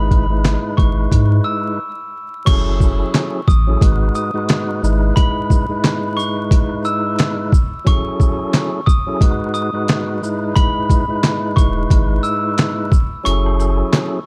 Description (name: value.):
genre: hip hop, boom-bap hip-hop.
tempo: 89 BPM.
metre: 4/4.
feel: swing 60% on 16ths.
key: C# minor.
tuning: A4 = 439 Hz.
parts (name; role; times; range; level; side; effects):
glockenspiel with soft plastic mallets; melody; 0.0-14.2 s; B5 to E6; -26 LUFS; equal; high-pass filter, low-pass filter, analog delay.
tonewheel organ; accompaniment; 0.0-14.2 s; G#2 to B4; -24 LUFS; equal; overdrive, fast rotary speaker, cassette tape, high-pass filter, low-pass filter.
warm sub bass; bass; 0.0-5.1, 11.6-13.8 s; E1 to G#2; -19 LUFS; equal; none.
trip hop sampler-style drum kit; drums; 0.1-14.1 s; crash cymbal, handclaps, hi-hat, kick drum, shaker, snare drum; -17 LUFS; equal; none.
egg shaker and woodblock; percussion; 13.3-14.1 s; none; -38 LUFS; equal; none.
room: digital ambience.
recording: dark, warm production, vinyl crackle.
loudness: -17 LUFS.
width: mono.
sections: 0.0-2.5 A section; 2.5-14.3 B section.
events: break 1.8-2.5; kick muted 13.3-13.9.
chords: 0.0 C#m7/G#; 2.5 F#m9; 3.8 G#m7; 4.8 C#m7/G#; 7.9 F#m9; 9.2 G#m7; 10.2 C#m7; 13.3 F#m9.